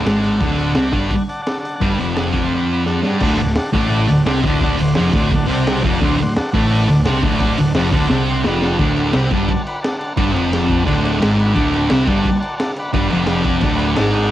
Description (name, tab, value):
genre	garage rock duo or trio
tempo	172 BPM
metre	4/4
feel	straight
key	D mixolydian from 3.2 s, D major from 8.8 s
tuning	A4 = 440 Hz
part	combo organ	sustained chords	0.0-14.3 s	D5 to C6	-26 LUFS	left 1 dB	cassette tape
part	thick fuzz guitar	riff	0.0-14.3 s	D2 to C4	-16 LUFS	equal	distortion, cassette tape
part	fuzz picked electric bass	bass	0.0-14.3 s	D1 to C2	-22 LUFS	equal	overdrive
part	crunchy breakbeat drum kit	drums	0.1-14.2 s	crash cymbal, hi-hat, kick drum, snare drum	-21 LUFS	equal	cassette tape
room	small room ambience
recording	home recording on cassette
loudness	-14 LUFS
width	side -13 dB against mid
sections	0.0-3.2 A section; 3.2-8.8 B section; 8.8-14.3 C section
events	transistor combo organ fill 0.0-0.4, 13.6-14.3; drum fill 2.9-3.2, 8.1-8.8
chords	0.0 D